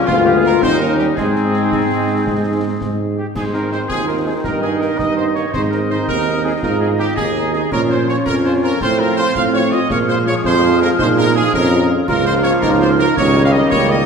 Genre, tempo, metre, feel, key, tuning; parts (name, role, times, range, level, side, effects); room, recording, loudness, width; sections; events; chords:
military-style march for wind band; 110 BPM (dotted quarters); 6/8; straight; Ab major; A4 = 440 Hz
dark euphonium; second line; 0.0-14.1 s; F3 to F4; -21 LUFS; right 2 dB
warm woodwind section; second line; 0.0-14.1 s; C4 to F5; -24 LUFS; left 2 dB
dark French horn section; accompaniment; 0.0-14.0 s; F3 to F4; -23 LUFS; left 4 dB
warm trombone section; sustained chords; 0.0-14.1 s; Eb3 to Eb4; -23 LUFS; right 2 dB
dark trumpet section; melody; 0.1-14.1 s; F4 to F5; -20 LUFS; equal
mellow tuba; bass; 0.1-14.1 s; Db2 to Bb2; -19 LUFS; right 2 dB
concert snare drum, concert bass drum and clash cymbals; drums; 0.1-13.9 s; -27 LUFS; left 1 dB
wet concert hall reverb, RT60 1.8 s; minimal, uncompressed stereo recording; -13 LUFS; side -6 dB against mid
0.0-3.4 A section; 3.4-14.1 A section
0.1 Ddim7; 0.6 Eb7; 1.2 Ab; 4.4 Eb/G; 5.5 Ab; 7.7 Bbm; 8.8 F/A; 9.9 Bbm7; 12.1 Bbm/Db; 13.2 Eb7/Db